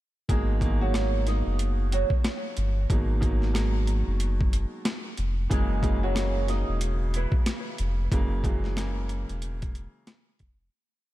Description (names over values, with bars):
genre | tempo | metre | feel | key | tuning
hip hop, boom-bap hip-hop | 92 BPM | 4/4 | swing 60% on 16ths | G# minor | A4 = 440 Hz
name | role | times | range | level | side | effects
flamenco guitar | melody | 0.3-7.3 s | E3 to D#5 | -32 LUFS | right 3 dB | wide subtle chorus, high-pass filter, low-pass filter, ping-pong delay
warm upright piano | accompaniment | 0.3-10.3 s | B2 to A#3 | -33 LUFS | right 2 dB | high-pass filter, low-pass filter
warm sub bass | bass | 0.3-10.7 s | E1 to G#1 | -26 LUFS | equal | none
boom bap sampler-style drum kit | drums | 0.3-10.6 s | hi-hat, kick drum, rim click, snare drum | -28 LUFS | equal | overdrive
room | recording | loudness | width
digital ambience | none | -24 LUFS | side -15 dB against mid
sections
0.3-10.7 hook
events
fade-out 8.1-10.7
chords
0.3 G#m7; 5.5 F#7